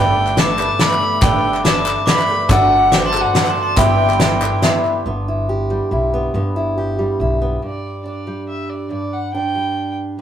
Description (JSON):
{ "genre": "indie folk with a building arrangement", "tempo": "141 BPM", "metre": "3/4", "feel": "straight", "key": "G major", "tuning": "A4 = 439 Hz", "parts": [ { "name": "warm fiddle", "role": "melody", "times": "0.0-4.6, 7.6-9.9 s", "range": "D5 to B5", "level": "-19 LUFS", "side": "right 1 dB", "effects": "none" }, { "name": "glockenspiel with brass mallets", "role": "second line", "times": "0.0-4.6 s", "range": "A5 to D6", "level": "-23 LUFS", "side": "equal", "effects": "none" }, { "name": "dark upright piano", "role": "accompaniment", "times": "0.0-5.1 s", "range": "G1 to E5", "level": "-22 LUFS", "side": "equal", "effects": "none" }, { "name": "picked twelve-string acoustic guitar", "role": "accompaniment", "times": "0.0-5.1 s", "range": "G2 to A4", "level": "-23 LUFS", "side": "left 4 dB", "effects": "none" }, { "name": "upright bass", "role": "bass", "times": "0.0-7.6 s", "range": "G1 to B1", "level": "-22 LUFS", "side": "equal", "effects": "none" }, { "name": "group handclap", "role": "percussion", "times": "0.3-4.9 s", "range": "none", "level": "-29 LUFS", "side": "left 2 dB", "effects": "none" }, { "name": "loose indie drum kit", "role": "drums", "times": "0.4-4.7 s", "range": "hi-hat, kick drum, snare drum", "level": "-18 LUFS", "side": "equal", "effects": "none" }, { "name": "fingerpicked steel-string acoustic guitar", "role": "accompaniment", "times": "5.1-10.2 s", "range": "G2 to G4", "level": "-21 LUFS", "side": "right 1 dB", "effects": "none" } ], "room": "moderate small room ambience, RT60 0.5 s", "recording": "rough rehearsal-room recording", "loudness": "-14 LUFS", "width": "side -9 dB against mid", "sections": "0.0-5.1 A section; 5.1-7.6 B section; 7.6-10.2 C section", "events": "none", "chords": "0.0 Gadd9; 2.5 D/G; 3.8 Em/G; 7.6 G5" }